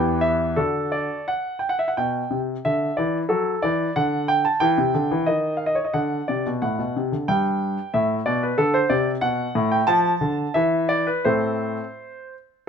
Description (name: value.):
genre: classical-period piano sonatina.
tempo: 83-94 BPM.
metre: 2/4.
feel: rubato.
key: unclear.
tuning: A4 = 439 Hz.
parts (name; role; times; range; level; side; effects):
clear concert grand piano; solo; 0.0-12.3 s; E2 to A5; -20 LUFS; equal; none.
room: light reverb.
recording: minimal, uncompressed stereo recording.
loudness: -20 LUFS.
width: side -7 dB against mid.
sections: 0.0-2.0 A section; 2.0-12.7 B section.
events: none.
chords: 0.0 Em; 0.6 D; 2.0 G/B; 3.3 D; 4.6 C; 5.3 N.C.; 5.9 D; 7.3 G; 8.6 D5; 9.9 F; 10.6 N.C.; 11.3 Am.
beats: | 0.58 1.29 | 1.98 2.65 | 3.31 3.96 | 4.61 5.27 | 5.94 6.63 | 7.30 7.96 | 8.60 9.24 | 9.89 10.55 | 11.26 11.98.